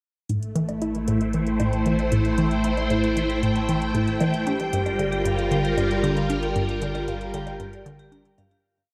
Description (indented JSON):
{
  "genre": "ambient, sequencer-driven space music",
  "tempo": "115 BPM",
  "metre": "4/4",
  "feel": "straight",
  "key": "A phrygian",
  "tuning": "A4 = 437 Hz",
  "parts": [
    { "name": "phased string machine", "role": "sustained chords", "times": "0.3-8.6 s", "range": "G3 to G5", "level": "-27 LUFS", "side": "equal", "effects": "ensemble chorus, phaser" },
    { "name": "resonant blip pluck", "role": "riff", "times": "0.3-8.5 s", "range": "G2 to E4", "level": "-28 LUFS", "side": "equal", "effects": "phaser, delay" },
    { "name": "round analog bass", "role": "bass", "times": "0.3-8.6 s", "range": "G1 to A1", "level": "-34 LUFS", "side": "equal", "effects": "none" },
    { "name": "electronic hi-hat and woodblock", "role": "percussion", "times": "0.3-8.6 s", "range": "none", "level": "-42 LUFS", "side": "equal", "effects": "delay" },
    { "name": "vibraphone with hard mallets", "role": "arpeggios", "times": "4.5-8.6 s", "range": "G4 to G5", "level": "-31 LUFS", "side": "equal", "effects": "delay" }
  ],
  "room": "wet lush hall reverb, RT60 2.8 s",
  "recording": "dreamy mix soaked in reverb",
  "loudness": "-24 LUFS",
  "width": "mono",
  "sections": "0.3-8.6 A section",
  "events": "fade-out 5.9-8.6",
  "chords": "0.3 Am7; 4.5 Gm7"
}